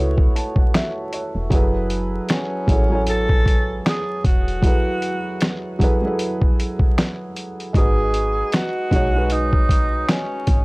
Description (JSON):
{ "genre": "lo-fi hip hop", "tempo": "77 BPM", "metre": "4/4", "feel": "swing 58% on 16ths", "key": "F# dorian", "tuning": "A4 = 440 Hz", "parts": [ { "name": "felt-muted upright piano", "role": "accompaniment", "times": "0.0-10.6 s", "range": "E3 to A5", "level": "-24 LUFS", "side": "right 1 dB", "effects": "none" }, { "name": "woody FM bass", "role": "bass", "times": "0.0-10.6 s", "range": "E1 to C#2", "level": "-23 LUFS", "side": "equal", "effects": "none" }, { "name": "dusty soul sampler-style drum kit", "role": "drums", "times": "0.2-10.6 s", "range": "finger snaps, hi-hat, kick drum, snare drum", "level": "-18 LUFS", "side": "equal", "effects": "none" }, { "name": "breathy tenor saxophone", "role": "melody", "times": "2.3-10.6 s", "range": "C#4 to A4", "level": "-24 LUFS", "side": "equal", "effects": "none" } ], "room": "little or no reverb", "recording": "dry, gritty hardware recording, vinyl crackle", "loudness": "-17 LUFS", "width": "side -25 dB against mid", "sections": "0.0-10.6 A section", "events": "felt piano fill 0.0-1.5", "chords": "0.0 A6; 1.5 F#m11; 7.7 G#m7", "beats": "0.73 | 1.51 2.29 3.07 3.85 | 4.62 5.40 6.18 6.96 | 7.74 8.52 9.30 10.08" }